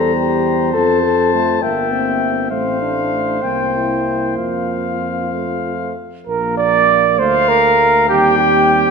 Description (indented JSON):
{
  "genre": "classical, brass quintet",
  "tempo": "62-69 BPM (dotted quarters)",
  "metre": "6/8",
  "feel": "rubato",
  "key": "F major",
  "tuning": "A4 = 440 Hz",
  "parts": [
    { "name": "clear trumpet", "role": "melody", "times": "0.0-8.9 s", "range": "F5 to Bb5", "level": "-19 LUFS", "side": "left 10 dB", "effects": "none" },
    { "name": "warm flugelhorn", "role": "second line", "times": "0.0-8.9 s", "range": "G4 to E5", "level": "-17 LUFS", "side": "right 5 dB", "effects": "none" },
    { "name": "mellow French horn", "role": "accompaniment", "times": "0.0-8.9 s", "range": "A3 to A4", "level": "-22 LUFS", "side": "left 5 dB", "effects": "none" },
    { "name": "warm trombone", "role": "accompaniment", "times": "0.0-8.9 s", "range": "F3 to Bb3", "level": "-25 LUFS", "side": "right 3 dB", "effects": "none" },
    { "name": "mellow tuba", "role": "bass", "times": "0.0-8.9 s", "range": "G1 to F2", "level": "-23 LUFS", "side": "right 3 dB", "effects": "none" }
  ],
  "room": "moderate scoring stage reverb, RT60 1.7 s",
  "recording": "minimal, uncompressed stereo recording",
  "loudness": "-13 LUFS",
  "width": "side -5 dB against mid",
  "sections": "0.0-6.3 A section; 6.3-8.9 B section",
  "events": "none",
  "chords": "0.0 C7/E; 0.7 F; 1.6 Edim/G; 2.5 F/A; 3.4 C7; 4.4 F; 6.3 Bb; 8.1 Cm/Eb"
}